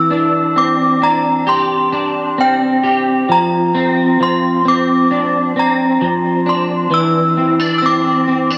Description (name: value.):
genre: dream pop.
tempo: 66 BPM.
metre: 4/4.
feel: straight.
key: unclear.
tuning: A4 = 438 Hz.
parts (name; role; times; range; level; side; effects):
synth chime; melody; 0.0-8.6 s; G5 to E6; -18 LUFS; equal; ensemble chorus, cassette tape, tape echo.
electric guitar at the edge of break-up; arpeggios; 0.0-8.6 s; E3 to G4; -17 LUFS; equal; ensemble chorus, cassette tape, tape echo.
room: wet spring reverb, RT60 1.6 s.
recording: home recording on cassette.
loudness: -14 LUFS.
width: mono.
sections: 0.0-8.6 A section.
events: none.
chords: 0.0 Cadd9; 3.3 Bbadd9; 6.9 Cadd9.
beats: 0.56 1.47 2.38 | 3.29 4.20 5.11 6.01 | 6.92 7.83.